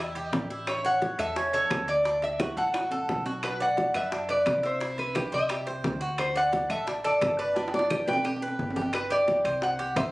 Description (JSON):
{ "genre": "latin, Cuban son and guajira", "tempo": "174 BPM", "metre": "4/4", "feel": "straight", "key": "unclear", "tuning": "A4 = 440 Hz", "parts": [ { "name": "lap resonator guitar", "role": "melody", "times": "0.0-10.1 s", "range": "B4 to G5", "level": "-27 LUFS", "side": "equal", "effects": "none" }, { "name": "Cuban tres", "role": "arpeggios", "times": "0.0-10.1 s", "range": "C#4 to E5", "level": "-32 LUFS", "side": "right 1 dB", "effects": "analog delay" }, { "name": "upright bass", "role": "bass", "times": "0.0-10.1 s", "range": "G1 to F#2", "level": "-39 LUFS", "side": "equal", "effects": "none" }, { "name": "bongos", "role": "percussion", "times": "0.2-10.1 s", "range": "none", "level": "-34 LUFS", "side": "left 2 dB", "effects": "none" }, { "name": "congas", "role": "percussion", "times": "0.2-10.1 s", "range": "none", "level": "-36 LUFS", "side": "equal", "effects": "none" }, { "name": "timbales", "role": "percussion", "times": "0.2-10.1 s", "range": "none", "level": "-36 LUFS", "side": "right 2 dB", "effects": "none" }, { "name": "claves", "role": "percussion", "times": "0.7-10.1 s", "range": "none", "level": "-37 LUFS", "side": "equal", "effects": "none" } ], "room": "moderate studio ambience, RT60 0.5 s", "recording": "recorded on a phone in the room, studio ambience", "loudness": "-25 LUFS", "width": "side -20 dB against mid", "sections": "0.0-8.9 A section; 8.9-10.1 B section", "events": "drum fill 2.4-3.4, 7.6-8.9", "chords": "0.0 C (rootless); 0.7 A; 2.1 Dadd9; 3.4 Bm; 4.8 C; 6.2 D; 7.6 G; 8.9 C5" }